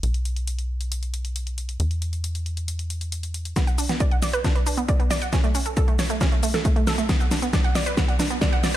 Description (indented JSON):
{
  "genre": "uplifting trance",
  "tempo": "136 BPM",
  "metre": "4/4",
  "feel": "straight",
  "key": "B minor",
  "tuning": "A4 = 440 Hz",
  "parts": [
    { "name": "tight sequencer bass", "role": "bass", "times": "0.0-3.5 s", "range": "B1 to E2", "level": "-26 LUFS", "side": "equal", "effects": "sidechain pumping" },
    { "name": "big-room dance drum kit", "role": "drums", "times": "0.0-8.8 s", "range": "hi-hat, shaker, snare drum", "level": "-28 LUFS", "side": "equal", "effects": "sidechain pumping on hats, studio reverb, sidechain pumping on perc" },
    { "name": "wide unison pluck", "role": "arpeggios", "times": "3.6-8.8 s", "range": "A3 to F#5", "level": "-26 LUFS", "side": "right 3 dB", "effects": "sidechain pumping, tape echo" },
    { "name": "electronic kick drum", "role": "drums", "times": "3.6-8.5 s", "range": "none", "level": "-21 LUFS", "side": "equal", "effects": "studio reverb" }
  ],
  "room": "light reverb",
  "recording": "none",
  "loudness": "-21 LUFS",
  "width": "side -13 dB against mid",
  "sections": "0.0-3.6 A section; 3.6-8.8 B section",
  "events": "build-up 3.6-8.8; drum fill 3.6-8.8",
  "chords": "0.0 N.C.; 3.6 Bm; 5.3 A; 7.1 Bm"
}